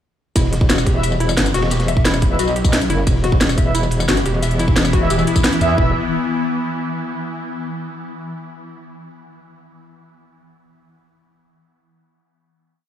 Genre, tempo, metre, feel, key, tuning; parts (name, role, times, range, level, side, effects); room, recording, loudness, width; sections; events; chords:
dark technical drum and bass; 177 BPM; 4/4; straight; E minor; A4 = 439 Hz
warbly dusty pluck; arpeggios; 0.4-5.9 s; E4 to E5; -24 LUFS; left 3 dB; chorus, sidechain pumping, ping-pong delay
metallic wobble bass; bass; 0.4-5.9 s; E1 to E2; -19 LUFS; equal; chorus, tube saturation, sidechain pumping
crunchy breakbeat drum kit; drums; 0.4-5.7 s; ride cymbal, snare drum; -31 LUFS; equal; high-pass filter on cymbals, high-pass filter on snare, high-pass filter on room
drum and bass drum kit; drums; 0.4-5.7 s; hi-hat, rim click, snare drum, tambourine; -20 LUFS; equal
electronic kick drum; drums; 0.4-5.8 s; -16 LUFS; equal
mellow brass ensemble; stabs; 0.9-5.9 s; E4 to E5; -24 LUFS; right 2 dB; ping-pong delay
swarming drone; sustained chords; 3.9-5.9 s; E3 to E4; -23 LUFS; left 2 dB; built-in reverb, sidechain pumping
light reverb, small room ambience; played on a big sound system in a bare room, large studio reverb; -15 LUFS; side -10 dB against mid
0.4-5.8 drop; 5.8-7.1 final chord
drop 0.4-5.8
0.4 E5